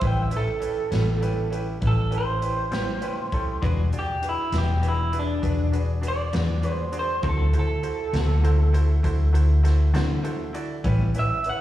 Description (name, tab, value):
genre	slow blues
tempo	66 BPM (dotted quarters)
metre	12/8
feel	straight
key	unclear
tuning	A4 = 440 Hz
part	electric guitar through a small old amp	melody	0.0-11.6 s	D4 to G5	-28 LUFS	right 1 dB	slapback echo
part	bright grand piano	accompaniment	0.0-11.6 s	C#4 to D5	-33 LUFS	right 3 dB	slapback echo
part	vintage muted fingered electric bass	bass	0.0-11.1 s	E1 to D3	-22 LUFS	equal	none
part	swinging big-band drum kit	drums	0.0-11.6 s	hi-hat, kick drum, snare drum	-32 LUFS	equal	none
part	clean electric guitar	accompaniment	0.9-11.0 s	A2 to F#4	-35 LUFS	left 8 dB	tremolo, slapback echo
room	little or no reverb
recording	live gig heard through the venue's PA, recital hall reverb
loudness	-21 LUFS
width	side -13 dB against mid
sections	0.0-11.6 A section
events	clean electric guitar solo 0.0-11.6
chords	0.0 A9; 3.6 E9; 7.2 D9; 10.8 A9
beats	| 0.02 0.92 1.82 2.73 | 3.63 4.53 5.43 6.33 | 7.24 8.14 9.04 9.94 | 10.85